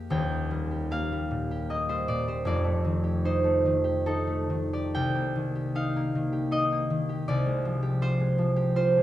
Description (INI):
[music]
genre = classical, solo harp piece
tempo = 75 BPM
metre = 3/4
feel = uneven beats, rubato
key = Eb major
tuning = A4 = 439 Hz
[part]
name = concert harp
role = solo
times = 0.0-9.0 s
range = Eb1 to G5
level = -25 LUFS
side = equal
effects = none
[sound]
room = wet recital hall reverb, RT60 1.4 s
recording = dark, warm production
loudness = -25 LUFS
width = side -13 dB against mid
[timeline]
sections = 0.1-9.0 A section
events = none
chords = 0.1 Eb; 2.5 F9; 4.9 Cm7; 7.3 Fm9/C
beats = | 0.11 0.93 1.72 | 2.47 3.26 4.07 | 4.94 5.76 6.53 | 7.29 8.04 8.78